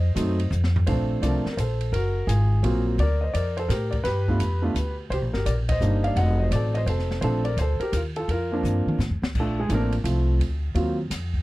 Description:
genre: jazz piano trio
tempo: 170 BPM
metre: 3/4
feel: swing 64% on 8ths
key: Bb major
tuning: A4 = 439 Hz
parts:
  - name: warm concert grand piano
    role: melody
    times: 0.0-11.0 s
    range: F3 to Gb5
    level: -26 LUFS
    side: equal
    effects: none
  - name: upright bass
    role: bass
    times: 0.0-11.4 s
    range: F1 to A2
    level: -23 LUFS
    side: equal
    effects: none
  - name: open jazz drum kit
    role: drums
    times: 0.2-11.4 s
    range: crash cymbal, hi-hat, kick drum, ride cymbal, snare drum, toms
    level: -33 LUFS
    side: equal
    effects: none
room: little or no reverb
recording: dry, close 1970s-style studio recording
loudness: -22 LUFS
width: side -18 dB against mid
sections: 0.9-9.3 A section; 9.3-11.4 B section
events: drum fill 0.5-0.9, 8.6-9.3; band accent 5.6; grand piano solo 9.3-11.4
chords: 0.0 F7b9; 0.9 Bbmaj7; 1.9 Gbmaj9#11; 3.0 Gm7 (rootless); 4.0 G7; 5.1 Cm7; 6.2 F7b9; 7.2 Bbmaj7; 10.4 Daug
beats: 0.16 0.52 | 0.87 1.22 1.57 | 1.93 2.28 2.63 | 2.99 3.34 3.69 | 4.05 4.40 4.75 | 5.11 5.46 5.81 | 6.17 6.52 6.87 | 7.23 7.58 7.93 | 8.29 8.64 8.99 | 9.35 9.70 10.05 | 10.40 10.76 11.11

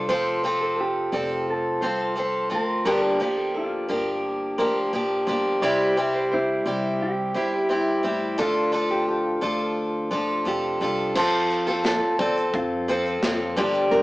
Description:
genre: acoustic pop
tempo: 87 BPM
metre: 4/4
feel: straight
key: F major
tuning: A4 = 439 Hz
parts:
  - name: picked steel-string acoustic guitar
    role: accompaniment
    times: 0.0-14.0 s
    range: G2 to A4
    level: -23 LUFS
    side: equal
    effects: none
  - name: upright bass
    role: bass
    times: 0.0-14.0 s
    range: F1 to F2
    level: -35 LUFS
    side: equal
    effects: none
  - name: nylon-string guitar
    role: arpeggios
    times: 0.1-14.0 s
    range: G4 to D5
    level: -27 LUFS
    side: right 1 dB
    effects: none
  - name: mellow electric guitar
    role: melody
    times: 0.8-14.0 s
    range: E4 to C5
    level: -28 LUFS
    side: equal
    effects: none
  - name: modern studio drum kit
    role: drums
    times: 11.2-14.0 s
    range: crash cymbal, kick drum, shaker, snare drum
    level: -29 LUFS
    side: equal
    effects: none
room: light reverb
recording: rough rehearsal-room recording, small speaker sound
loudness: -21 LUFS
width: side -19 dB against mid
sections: 0.0-11.2 A section; 11.2-14.0 B section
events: none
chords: 0.0 F; 2.9 Gm7; 5.6 C; 8.4 Dm; 11.2 F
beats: | 0.09 0.79 1.48 2.17 | 2.86 3.55 4.24 4.93 | 5.62 6.32 7.01 7.70 | 8.39 9.08 9.77 10.46 | 11.15 11.85 12.54 13.23 | 13.92

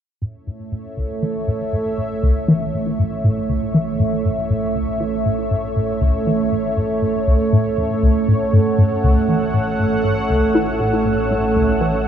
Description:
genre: ambient, sequencer-driven space music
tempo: 119 BPM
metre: 4/4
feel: straight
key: A major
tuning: A4 = 440 Hz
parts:
  - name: sweeping resonant pad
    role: sustained chords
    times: 0.6-12.1 s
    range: A3 to F#5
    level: -19 LUFS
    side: right 2 dB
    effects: chorus
  - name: resonant blip pluck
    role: riff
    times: 0.2-11.9 s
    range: C#2 to E3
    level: -19 LUFS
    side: left 1 dB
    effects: phaser, cassette tape, ping-pong delay
  - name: analog drone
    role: bass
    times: 1.7-12.1 s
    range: A1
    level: -32 LUFS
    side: left 1 dB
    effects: chorus
  - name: wind-like tuned noise texture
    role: texture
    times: 1.3-12.1 s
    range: C#4 to E5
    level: -33 LUFS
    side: equal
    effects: built-in reverb
room: wet plate reverb, RT60 3.4 s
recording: dark, warm production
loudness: -16 LUFS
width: side -9 dB against mid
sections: 0.2-12.1 A section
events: fade-in on synth drone 0.2-12.1; fade-in on synth texture 0.2-12.1; filter sweep on synth arpeggio sound 0.2-12.1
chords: 0.2 A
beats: | 0.22 0.72 1.22 1.73 | 2.23 2.74 3.24 3.75 | 4.25 4.75 5.26 5.76 | 6.27 6.77 7.27 7.78 | 8.28 8.79 9.29 9.79 | 10.30 10.80 11.31 11.81

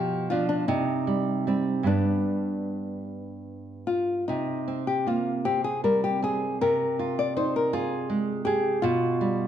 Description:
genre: romantic duo for nylon-string guitar and classical guitar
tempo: 49-56 BPM (dotted quarters)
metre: 6/8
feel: rubato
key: C minor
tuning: A4 = 442 Hz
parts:
  - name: nylon-string guitar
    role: melody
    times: 0.0-9.5 s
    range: D4 to D5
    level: -27 LUFS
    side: left 4 dB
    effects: none
  - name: nylon-string guitar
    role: accompaniment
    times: 0.0-9.5 s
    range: G2 to Ab4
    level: -27 LUFS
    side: right 4 dB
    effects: none
room: wet recital hall reverb, RT60 1.4 s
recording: dark, warm production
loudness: -24 LUFS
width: side -10 dB against mid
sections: 0.0-9.5 A section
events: none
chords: 0.0 G7/B; 0.7 Cm; 1.9 G; 4.3 C5; 6.6 Fm/C; 8.8 G7/B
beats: 0.68 | 1.88 3.08 | 4.29 5.46 | 6.62 7.74 | 8.84

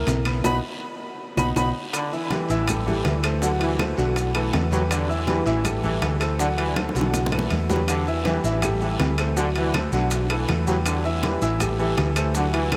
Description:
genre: latin, salsa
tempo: 161 BPM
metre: 4/4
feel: straight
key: E minor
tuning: A4 = 439 Hz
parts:
  - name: clear concert grand piano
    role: accompaniment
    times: 0.0-12.8 s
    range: E3 to F#5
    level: -29 LUFS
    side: equal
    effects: none
  - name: hollow-body short-scale fingered electric bass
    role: bass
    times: 0.0-12.8 s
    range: A1 to E2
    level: -28 LUFS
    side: equal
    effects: none
  - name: bongos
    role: percussion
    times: 0.1-12.8 s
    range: none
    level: -35 LUFS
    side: equal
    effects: none
  - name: congas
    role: percussion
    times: 0.1-12.8 s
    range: none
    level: -36 LUFS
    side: equal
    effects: none
  - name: guiro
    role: percussion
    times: 0.1-12.8 s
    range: none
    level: -41 LUFS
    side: equal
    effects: none
  - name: maracas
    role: percussion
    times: 0.1-12.8 s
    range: none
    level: -41 LUFS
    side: equal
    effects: none
  - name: timbales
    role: percussion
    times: 0.1-12.8 s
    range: none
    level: -34 LUFS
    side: equal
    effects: none
  - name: claves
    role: percussion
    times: 0.3-12.8 s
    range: none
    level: -41 LUFS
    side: equal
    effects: none
  - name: breathy bright jazz flute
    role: melody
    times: 0.5-1.7 s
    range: B5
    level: -35 LUFS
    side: equal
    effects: diffuse ambient delay
  - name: bright trombone section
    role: second line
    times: 1.9-12.7 s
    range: D3 to F#3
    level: -30 LUFS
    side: equal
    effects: diffuse ambient delay
room: wet huge ambient reverb, RT60 5.2 s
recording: dreamy mix soaked in reverb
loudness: -23 LUFS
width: mono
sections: 0.0-1.9 A section; 1.9-12.8 B section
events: band accent 0.4-1.9; drum fill 1.4-1.9, 6.8-7.9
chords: 0.4 B; 1.9 Em7; 2.7 Am7; 3.4 D7; 4.2 B7sus4; 4.9 Em7; 5.7 Am7; 6.4 D7; 7.1 B7sus4; 7.9 Em7; 8.6 Am7; 9.4 D7; 10.1 B7sus4; 10.9 Em7; 11.6 Am7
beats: 0.08 | 0.45 0.82 1.19 1.56 | 1.94 2.31 2.68 3.05 | 3.42 3.79 4.16 4.54 | 4.91 5.28 5.65 6.02 | 6.39 6.76 7.14 7.51 | 7.88 8.25 8.62 9.00 | 9.37 9.74 10.11 10.49 | 10.86 11.23 11.60 11.98 | 12.35 12.72

